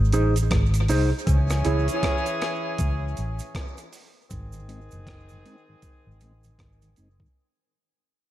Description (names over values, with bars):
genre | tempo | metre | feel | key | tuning
dub reggae | 79 BPM | 4/4 | swing 60% on 16ths | unclear | A4 = 442 Hz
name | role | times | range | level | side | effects
vintage muted fingered electric bass | bass | 0.0-7.2 s | F#1 to C#2 | -23 LUFS | equal | none
mellow electric guitar | accompaniment | 0.1-1.9 s | D#4 to C#5 | -27 LUFS | right 2 dB | warbly pitch drift, tape echo
breakbeat sampler-style drum kit | drums | 0.1-7.3 s | hi-hat, kick drum, rim click | -28 LUFS | equal | tape echo
cabasa | percussion | 0.1-7.2 s | none | -41 LUFS | right 9 dB | tape echo
warm horn section | second line | 1.3-6.9 s | D#3 to G#4 | -31 LUFS | left 1 dB | tape echo
mellow tonewheel organ | accompaniment | 4.5-7.3 s | G#2 to D#4 | -51 LUFS | left 2 dB | chorus vibrato, slow rotary speaker
room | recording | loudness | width
digital ambience | echo-heavy mix | -21 LUFS | side -14 dB against mid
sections
0.0-7.3 A section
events
break 0.0-7.3; fade-out 0.0-7.3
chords
0.0 G#; 1.3 C#m; 4.3 G#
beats
0.51 | 1.27 2.03 2.79 3.55 | 4.31 5.07 5.83 6.59